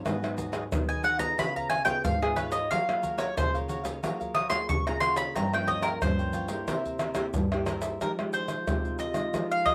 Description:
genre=samba and choro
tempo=90 BPM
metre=4/4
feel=straight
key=F minor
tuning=A4 = 438 Hz
part: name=mandolin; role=melody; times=0.0-9.7 s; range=Ab4 to Eb6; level=-30 LUFS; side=equal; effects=none
part: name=cavaquinho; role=accompaniment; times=0.0-8.0 s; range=E4 to G5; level=-39 LUFS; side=equal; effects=none
part: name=nylon-string guitar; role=accompaniment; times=0.0-9.7 s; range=G2 to Ab4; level=-36 LUFS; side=equal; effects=none
part: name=egg shaker, surdo, pandeiro and tamborim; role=percussion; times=0.1-9.7 s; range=none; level=-34 LUFS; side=equal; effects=none
part: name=breathy trombone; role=second line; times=8.0-9.7 s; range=F4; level=-39 LUFS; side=equal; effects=none
room=moderate studio reverb, RT60 0.6 s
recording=rough home demo mix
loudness=-29 LUFS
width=mono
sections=0.0-8.0 A section; 8.0-9.7 B section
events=mandolin solo 0.0-8.0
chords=0.1 Abm7; 1.4 Db7; 2.7 Gbmaj9; 5.4 Gm7b5; 6.7 C7; 8.0 Fm9

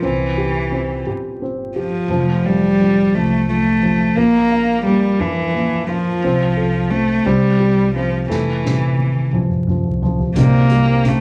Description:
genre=six-eight pop ballad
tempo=58 BPM (dotted quarters)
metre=6/8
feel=straight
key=F major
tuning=A4 = 440 Hz
part: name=warm cello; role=melody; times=0.0-11.2 s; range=E3 to Bb3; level=-19 LUFS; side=equal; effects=none
part: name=dark upright piano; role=accompaniment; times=0.0-11.2 s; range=C3 to F5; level=-22 LUFS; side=equal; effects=none
part: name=upright bass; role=bass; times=0.0-11.2 s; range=F1 to F2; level=-25 LUFS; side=equal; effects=none
part: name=soft-mallet drum kit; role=drums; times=8.3-11.2 s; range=hi-hat, kick drum, snare drum, toms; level=-27 LUFS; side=equal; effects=none
part: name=fingerpicked steel-string acoustic guitar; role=arpeggios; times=10.4-11.2 s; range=C3 to G4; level=-28 LUFS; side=equal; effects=none
room=moderate large studio reverb, RT60 1.1 s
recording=vinyl crackle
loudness=-17 LUFS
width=mono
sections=0.0-11.2 A section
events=drum fill 8.3-10.4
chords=0.0 C; 2.1 F; 4.2 Bb; 6.2 F/C; 7.3 C5; 8.3 F; 10.4 Cm

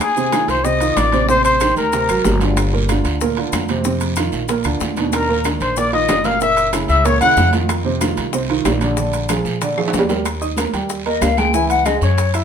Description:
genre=Afro-Cuban jazz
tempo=187 BPM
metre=4/4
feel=straight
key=unclear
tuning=A4 = 439 Hz
part: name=mellow trumpet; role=melody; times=0.0-2.4, 5.1-7.5 s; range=Ab4 to Gb5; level=-16 LUFS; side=left 2 dB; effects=none
part: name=silver concert flute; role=second line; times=0.0-2.4, 5.1-7.5, 11.1-12.3 s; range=Db5 to Gb6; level=-22 LUFS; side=left 5 dB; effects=none
part: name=bongos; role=percussion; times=0.0-12.3 s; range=none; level=-27 LUFS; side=left 5 dB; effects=none
part: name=claves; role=percussion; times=0.0-12.4 s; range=none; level=-32 LUFS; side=left 6 dB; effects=none
part: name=congas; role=percussion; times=0.0-12.4 s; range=none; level=-27 LUFS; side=equal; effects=none
part: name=guiro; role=percussion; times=0.0-12.4 s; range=none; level=-31 LUFS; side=right 4 dB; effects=none
part: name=maracas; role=percussion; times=0.0-12.4 s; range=none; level=-32 LUFS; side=left 5 dB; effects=none
part: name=timbales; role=percussion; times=0.0-12.4 s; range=none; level=-25 LUFS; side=right 4 dB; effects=none
part: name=warm baby grand piano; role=accompaniment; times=0.2-12.4 s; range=Bb2 to Fb6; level=-20 LUFS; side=right 5 dB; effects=none
part: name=upright bass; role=bass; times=0.5-12.4 s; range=Gb1 to Bb2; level=-21 LUFS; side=left 1 dB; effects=none
room=moderate studio reverb, RT60 0.8 s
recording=minimal, uncompressed stereo recording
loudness=-15 LUFS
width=side -7 dB against mid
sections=0.0-10.3 A section; 10.3-12.4 B section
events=drum fill 9.8-10.3; flute solo 10.3-12.4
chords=0.0 Ab6; 1.3 Am7b5; 1.9 D7alt; 2.6 Gm7; 3.8 F5; 4.5 Bb; 5.1 Ebsus2; 6.4 Gb7; 7.7 F5; 9.0 Bb6; 10.3 Eb; 11.5 Dbm

